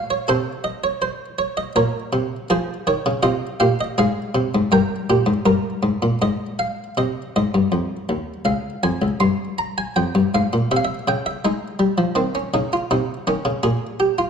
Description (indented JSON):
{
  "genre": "classical, baroque-style 3-part fugue for harpsichord",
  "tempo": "81 BPM",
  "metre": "3/4",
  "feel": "straight",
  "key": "unclear",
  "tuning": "A4 = 438 Hz",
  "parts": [
    { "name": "buff-stop harpsichord", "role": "solo", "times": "0.0-14.3 s", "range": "Db2 to C6", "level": "-18 LUFS", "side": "equal", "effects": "none" }
  ],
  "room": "moderate recital hall reverb, RT60 1.8 s",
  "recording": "dark, warm production",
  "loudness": "-18 LUFS",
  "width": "side -7 dB against mid",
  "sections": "0.0-7.0 A section; 7.0-14.3 B section",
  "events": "none",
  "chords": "0.3 Cm6; 1.8 Bbm; 2.5 Fm; 4.0 Fm/Ab; 4.7 Gm; 6.2 Fm/Ab; 7.0 Ab; 8.5 Db; 9.2 Fmadd9; 10.7 C; 11.4 Ab; 12.9 Cm; 13.6 Gm/Bb"
}